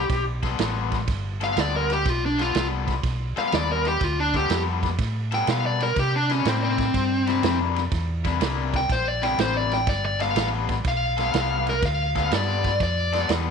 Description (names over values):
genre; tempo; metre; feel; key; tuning
electric blues shuffle; 123 BPM; 4/4; swing 68% on 8ths; G mixolydian; A4 = 439 Hz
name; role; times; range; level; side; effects
dark smooth lead guitar; melody; 0.0-13.3 s; C4 to G5; -24 LUFS; left 1 dB; overdrive
hollow-body short-scale fingered electric bass; bass; 0.0-13.5 s; G1 to C3; -27 LUFS; right 1 dB; none
vintage drum kit; drums; 0.1-13.4 s; kick drum, ride cymbal, snare drum; -28 LUFS; right 5 dB; none
overdriven semi-hollow guitar; riff; 0.4-13.5 s; C3 to A4; -29 LUFS; left 14 dB; none
room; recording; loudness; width
light reverb, small room ambience; 1960s-style stereo; -21 LUFS; side -6 dB against mid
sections
0.0-13.5 A section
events
lead electric guitar solo 0.0-13.5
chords
0.0 G9; 6.0 C9; 9.9 G9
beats
| 0.10 0.59 1.08 1.57 | 2.06 2.55 3.03 3.52 | 4.01 4.50 4.99 5.48 | 5.96 6.45 6.94 7.43 | 7.92 8.41 8.89 9.38 | 9.87 10.36 10.85 11.34 | 11.83 12.31 12.80 13.29